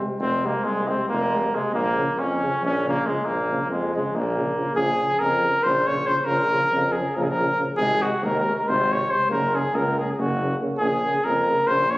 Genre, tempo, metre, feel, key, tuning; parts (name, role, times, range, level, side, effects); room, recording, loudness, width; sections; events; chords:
balkan folk, Balkan brass band; 279 BPM (eighths); 7/8; straight; Bb minor; A4 = 440 Hz
dark euphonium; accompaniment; 0.0-12.0 s; C3 to Db3; -30 LUFS; right 1 dB
warm euphonium; accompaniment; 0.0-12.0 s; F3 to Bb3; -33 LUFS; left 1 dB
warm flugelhorn; melody; 0.2-12.0 s; Ab3 to Db5; -22 LUFS; equal
warm tuba; bass; 0.2-12.0 s; F1 to F2; -28 LUFS; equal
moderate concert hall reverb, RT60 1.8 s; recorded on a phone in the room, club reverb; -20 LUFS; side -19 dB against mid
0.0-4.8 A section; 4.8-12.0 B section
0.0 Fm; 1.7 Bbm; 7.8 Ab; 9.3 Gb; 10.8 Bbm